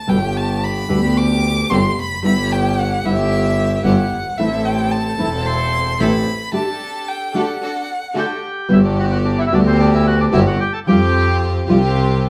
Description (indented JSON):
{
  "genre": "tango",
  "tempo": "111 BPM",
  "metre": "4/4",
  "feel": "rubato",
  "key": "G major",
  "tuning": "A4 = 440 Hz",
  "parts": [
    { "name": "rich violin", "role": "second line", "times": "0.0-8.4 s", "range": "E5 to D6", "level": "-24 LUFS", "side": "equal", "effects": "none" },
    { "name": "nylon-string guitar", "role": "accompaniment", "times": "0.1-11.8 s", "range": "B2 to G4", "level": "-20 LUFS", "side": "equal", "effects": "none" },
    { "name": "clear studio string section", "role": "stabs", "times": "0.1-12.3 s", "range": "B3 to A4", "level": "-25 LUFS", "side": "equal", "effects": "none" },
    { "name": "clear double bass", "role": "bass", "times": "0.1-12.3 s", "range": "E1 to F2", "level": "-21 LUFS", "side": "equal", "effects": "none" },
    { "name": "bandoneon", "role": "melody", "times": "8.2-11.4 s", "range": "C4 to A5", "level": "-24 LUFS", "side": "equal", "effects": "none" }
  ],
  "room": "wet studio reverb, RT60 0.8 s",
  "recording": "band playing live in one room",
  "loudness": "-17 LUFS",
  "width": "mono",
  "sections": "0.0-8.7 A section; 8.7-12.3 B section",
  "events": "violin solo 0.0-8.7; break 6.5-8.7",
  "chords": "0.1 G; 2.2 Em/G; 4.4 Am; 6.5 Dsus4; 8.7 Gmaj7; 10.9 Fsus2"
}